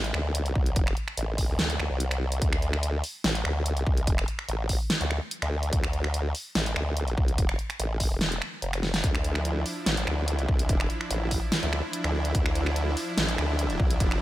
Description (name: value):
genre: heavy wobble dubstep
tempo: 145 BPM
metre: 4/4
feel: half-time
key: D minor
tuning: A4 = 442 Hz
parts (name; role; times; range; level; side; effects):
- formant-sweep wobble bass; bass; 0.0-14.2 s; E1 to D2; -27 LUFS; equal; chorus, overdrive
- big-room dance drum kit; drums; 0.0-14.2 s; finger snaps, hi-hat, snare drum; -30 LUFS; equal; none
- electronic kick drum; drums; 0.6-14.1 s; none; -26 LUFS; equal; none
- supersaw pad; sustained chords; 9.0-14.2 s; F3 to E4; -32 LUFS; right 1 dB; sidechain pumping
room: digital ambience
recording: none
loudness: -25 LUFS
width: side -15 dB against mid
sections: 0.0-14.2 A section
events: drum fill 8.8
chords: 0.0 Dmadd9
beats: 0.35 | 0.76 1.18 1.59 2.00 | 2.42 2.83 3.24 3.66 | 4.07 4.49 4.90 5.31 | 5.73 6.14 6.55 6.97 | 7.38 7.80 8.21 8.62 | 9.04 9.45 9.87 10.28 | 10.69 11.11 11.52 11.93 | 12.35 12.76 13.18 13.59 | 14.00